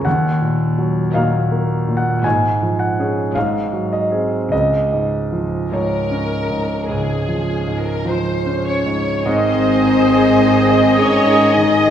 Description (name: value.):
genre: classical, romantic movement for piano and orchestra.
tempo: 49-56 BPM.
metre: 4/4.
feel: rubato.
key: Db major.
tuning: A4 = 442 Hz.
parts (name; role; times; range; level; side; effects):
clear concert grand piano; melody; 0.0-11.9 s; Db2 to Ab5; -17 LUFS; equal; none.
clear symphonic double bass section; bass; 0.1-11.9 s; Ab1 to Eb2; -28 LUFS; right 3 dB; none.
rich symphonic cello section; bass; 0.1-11.9 s; Eb2 to Db3; -26 LUFS; right 2 dB; none.
warm symphonic violin section; second line; 1.1-11.9 s; Ab4 to Eb5; -24 LUFS; left 3 dB; none.
rich symphonic viola section; accompaniment; 1.1-11.9 s; F3 to Eb5; -22 LUFS; right 2 dB; none.
mellow French horn section; sustained chords; 8.7-11.9 s; C4 to Eb4; -16 LUFS; left 2 dB; none.
warm symphonic violin section; melody; 9.2-11.9 s; Eb5; -27 LUFS; left 2 dB; none.
clear clarinet; second line; 9.3-11.9 s; Eb5; -23 LUFS; equal; none.
mellow silver concert flute; second line; 9.3-11.9 s; Ab5; -24 LUFS; left 2 dB; none.
warm oboe; second line; 9.3-11.9 s; Eb5; -23 LUFS; right 1 dB; none.
mellow bassoon; accompaniment; 9.3-11.9 s; Eb3; -23 LUFS; right 1 dB; none.
room: wet recital hall reverb, RT60 1.4 s.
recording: heard from further back in the room.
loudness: -14 LUFS.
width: side -9 dB against mid.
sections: 0.0-9.3 A section; 9.3-11.9 B section.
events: none.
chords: 0.1 Ebm; 2.2 Db/Ab; 3.4 Ab7; 4.5 Db; 9.3 Ab.